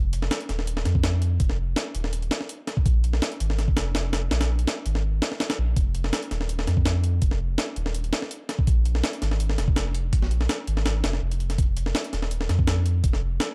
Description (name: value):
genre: drum and bass, jungle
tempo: 165 BPM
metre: 4/4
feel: straight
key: unclear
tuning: A4 = 441 Hz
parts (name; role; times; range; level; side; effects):
- soft dub sub bass; bass; 0.0-13.4 s; Eb1 to F2; -26 LUFS; equal; tube saturation
- breakbeat sampler-style drum kit; drums; 0.1-13.5 s; hi-hat, kick drum, snare drum; -28 LUFS; equal; studio reverb
room: little or no reverb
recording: dark, warm production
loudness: -25 LUFS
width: mono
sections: 0.0-13.5 A section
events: none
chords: none